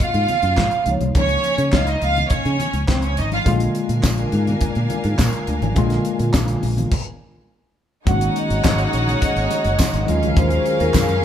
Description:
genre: disco.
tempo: 104 BPM.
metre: 4/4.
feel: straight.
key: unclear.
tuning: A4 = 441 Hz.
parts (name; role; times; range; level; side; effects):
vibraphone with soft mallets; melody; 0.0-2.3, 8.1-11.2 s; Bb4 to Gb5; -23 LUFS; right 2 dB; none.
warm studio violin section; second line; 0.0-3.4, 8.1-11.2 s; C4 to Gb5; -23 LUFS; equal; none.
tine electric piano; accompaniment; 0.0-11.2 s; C3 to Gb4; -25 LUFS; left 2 dB; medium stereo tremolo, tube saturation.
fingered electric bass; bass; 0.0-11.2 s; Gb1 to Db3; -21 LUFS; equal; none.
damped 70s drum kit; drums; 0.0-11.2 s; crash cymbal, handclaps, hi-hat, kick drum, snare drum; -21 LUFS; equal; none.
congas; percussion; 0.3-11.1 s; none; -29 LUFS; left 3 dB; none.
warm studio string section; sustained chords; 3.5-11.2 s; Eb3 to Ab5; -29 LUFS; left 1 dB; none.
tambourine; percussion; 4.0-11.1 s; none; -33 LUFS; right 4 dB; none.
room: moderate stone room reverb, RT60 1.4 s.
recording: band playing live in one room.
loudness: -16 LUFS.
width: side -10 dB against mid.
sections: 0.0-8.1 A section; 8.1-11.2 B section.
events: stop 6.9-8.1.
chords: 0.0 Ab13; 0.9 Db69; 3.5 Bb7; 8.1 Ab9sus4; 10.1 Ebm11.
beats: 0.01 0.58 | 1.16 1.74 2.31 2.89 | 3.46 4.04 4.62 5.19 | 5.77 6.34 6.92 7.49 | 8.07 8.64 9.22 9.80 | 10.37 10.95.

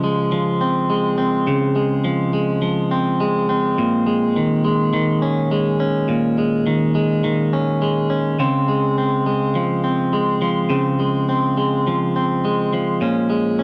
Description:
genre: indie pop.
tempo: 104 BPM.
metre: 4/4.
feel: swing 55% on 16ths.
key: Db major.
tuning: A4 = 438 Hz.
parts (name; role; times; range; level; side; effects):
clean electric guitar; solo; 0.0-13.6 s; Bb2 to Db4; -19 LUFS; equal; warbly pitch drift.
room: moderate studio reverb, RT60 0.8 s.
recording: none.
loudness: -19 LUFS.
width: mono.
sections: 0.0-8.4 A section; 8.4-13.6 B section.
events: none.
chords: 0.0 Dbmaj7; 3.8 Bbm7; 8.4 Dbmaj7; 13.0 Bbm7.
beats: 0.32 0.90 | 1.48 2.05 2.63 3.21 | 3.78 4.36 4.93 5.51 | 6.09 6.67 7.24 7.82 | 8.40 8.97 9.55 10.13 | 10.71 11.28 11.86 12.44 | 13.02 13.59.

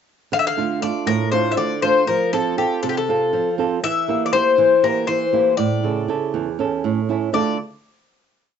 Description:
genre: greek folk, Greek bouzouki band.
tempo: 240 BPM (eighths).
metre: 7/8.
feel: straight.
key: D minor.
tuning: A4 = 439 Hz.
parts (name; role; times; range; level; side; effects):
Greek bouzouki; melody; 0.3-7.6 s; G4 to F5; -18 LUFS; left 6 dB; cassette tape.
flamenco guitar; accompaniment; 0.3-7.6 s; E2 to A4; -21 LUFS; right 8 dB; cassette tape.
room: wet studio ambience, RT60 0.5 s.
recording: home recording on cassette, nothing above 7.8 kHz.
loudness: -17 LUFS.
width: side -7 dB against mid.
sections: 0.3-7.3 A section; 7.3-8.6 final chord.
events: none.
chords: 0.3 Dm; 2.1 F; 3.8 Edim; 5.6 A; 7.3 Dm.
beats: | 0.33 0.57 0.82 1.07 1.32 1.57 1.82 | 2.07 2.32 2.57 2.82 3.07 3.33 3.58 | 3.83 4.08 4.33 4.58 4.83 5.08 5.33 | 5.58 5.83 6.08 6.33 6.58 6.83 7.08 | 7.33.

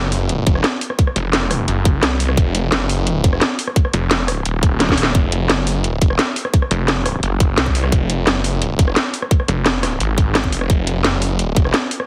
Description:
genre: dark technical drum and bass.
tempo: 173 BPM.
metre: 4/4.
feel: straight.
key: F phrygian.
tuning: A4 = 440 Hz.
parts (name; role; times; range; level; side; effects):
snarling distorted saw bass; bass; 0.0-11.7 s; Eb1 to C2; -21 LUFS; equal; distortion, tube saturation, sidechain pumping.
drum and bass drum kit; drums; 0.1-12.1 s; hi-hat, rim click, snare drum; -21 LUFS; equal; none.
electronic kick drum; drums; 0.5-11.6 s; none; -17 LUFS; equal; none.
room: light reverb.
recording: heavily compressed radio sound.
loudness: -17 LUFS.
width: mono.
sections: 0.0-5.1 A section; 5.1-12.1 A section.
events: drop 0.0-5.1, 5.1-12.1; drum fill 4.8-5.1.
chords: none.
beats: 0.29 0.64 | 0.99 1.33 1.68 2.03 | 2.37 2.72 3.07 3.41 | 3.76 4.11 4.46 4.80 | 5.15 5.50 5.84 6.19 | 6.54 6.88 7.23 7.58 | 7.92 8.27 8.62 8.96 | 9.31 9.66 10.00 10.35 | 10.70 11.04 11.39 11.74.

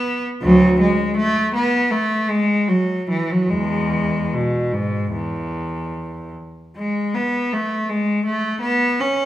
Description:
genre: classical, baroque-style suite movement for unaccompanied cello.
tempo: 72-82 BPM.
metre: 4/4.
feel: rubato.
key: unclear.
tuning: A4 = 435 Hz.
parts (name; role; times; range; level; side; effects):
rich cello; solo; 0.0-9.3 s; D2 to C#4; -17 LUFS; equal; none.
room: wet recital hall reverb, RT60 1.3 s.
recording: recorded in a church or concert hall.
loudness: -17 LUFS.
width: side -14 dB against mid.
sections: 0.0-6.8 A section; 6.8-9.3 B section.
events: none.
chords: none.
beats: | 0.44 1.18 1.92 2.69 | 3.51 4.33 5.15 5.96 | 6.76 7.53 8.27 9.01.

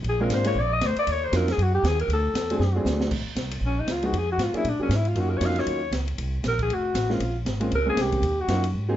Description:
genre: jazz, small-group swing and bop.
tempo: 235 BPM.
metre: 4/4.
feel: swing 58% on 8ths.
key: unclear.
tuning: A4 = 440 Hz.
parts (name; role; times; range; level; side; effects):
upright bass; bass; 0.0-9.0 s; F1 to Bb2; -26 LUFS; equal; none.
open jazz drum kit; drums; 0.0-8.7 s; crash cymbal, hi-hat, kick drum, ride cymbal, snare drum; -32 LUFS; right 1 dB; none.
growling alto saxophone; melody; 0.1-8.6 s; C#4 to F5; -26 LUFS; left 2 dB; plate reverb.
clear upright piano; accompaniment; 0.2-9.0 s; F3 to G#4; -28 LUFS; right 1 dB; none.
room: light reverb.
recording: nothing above 7.8 kHz.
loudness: -22 LUFS.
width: side -12 dB against mid.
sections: 0.0-3.1 A section; 3.1-9.0 A section.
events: alto saxophone solo 0.0-3.1, 3.1-9.0; drum fill 2.6-3.1.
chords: 0.1 Bb7; 1.1 Ebm7; 2.1 D7#11; 3.1 Db5; 4.1 Bb7b13/F; 4.7 Bb7alt; 5.2 Ebm9; 6.2 Abadd9 (rootless); 6.7 F; 7.2 Bbm9; 8.2 Ebm7.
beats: | 0.05 0.31 0.56 0.82 | 1.07 1.33 1.58 1.84 | 2.10 2.35 2.61 2.86 | 3.12 3.37 3.63 3.88 | 4.14 4.39 4.65 4.91 | 5.16 5.42 5.67 5.93 | 6.19 6.44 6.70 6.95 | 7.21 7.46 7.72 7.98 | 8.23 8.49 8.74.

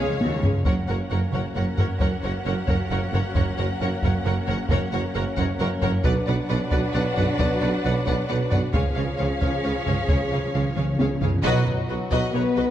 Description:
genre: cinematic, epic orchestral film score.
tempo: 134 BPM.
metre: 3/4.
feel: straight.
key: F# major.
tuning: A4 = 440 Hz.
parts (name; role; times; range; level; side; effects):
dark symphonic violin section; melody; 0.0-12.7 s; F#4 to F#5; -36 LUFS; left 2 dB; none.
warm symphonic violin section; second line; 0.0-12.6 s; A#4 to D#5; -32 LUFS; left 3 dB; none.
rich symphonic viola section; accompaniment; 0.0-12.6 s; F#4 to B4; -33 LUFS; right 1 dB; none.
mellow French horn section; sustained chords; 0.0-12.7 s; E#3 to D4; -31 LUFS; left 3 dB; none.
warm symphonic string section; sustained chords; 0.0-12.7 s; C#4 to F#5; -31 LUFS; equal; none.
mellow tuba; bass; 0.0-12.7 s; F#1 to C#2; -30 LUFS; right 3 dB; none.
rich symphonic cello section; bass; 0.0-12.6 s; C#2 to C#3; -30 LUFS; right 2 dB; none.
rich symphonic double bass section; bass; 0.0-12.6 s; F#1 to C#2; -29 LUFS; right 2 dB; none.
timpani; percussion; 0.0-0.6, 8.7-11.4 s; C#3; -31 LUFS; equal; none.
taiko ensemble; drums; 0.2-12.5 s; none; -26 LUFS; equal; none.
room: wet recital hall reverb, RT60 1.6 s.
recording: dark, warm production.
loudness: -21 LUFS.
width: side -11 dB against mid.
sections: 0.7-11.4 A section; 11.4-12.7 B section.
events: timpani fill 0.0-0.7, 8.7-11.4; drum fill 0.0-0.7, 10.8-11.4; build-up 0.7-11.4; band accent 11.4-11.9.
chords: 0.0 C#; 0.7 F#; 6.0 Bm; 8.7 C#; 11.4 B.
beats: 0.20 | 0.65 1.10 1.55 | 2.00 2.45 2.90 | 3.35 3.80 4.25 | 4.70 5.15 5.60 | 6.05 6.50 6.95 | 7.39 7.84 8.29 | 8.74 9.19 9.64 | 10.09 10.54 10.99 | 11.44 11.89 12.34.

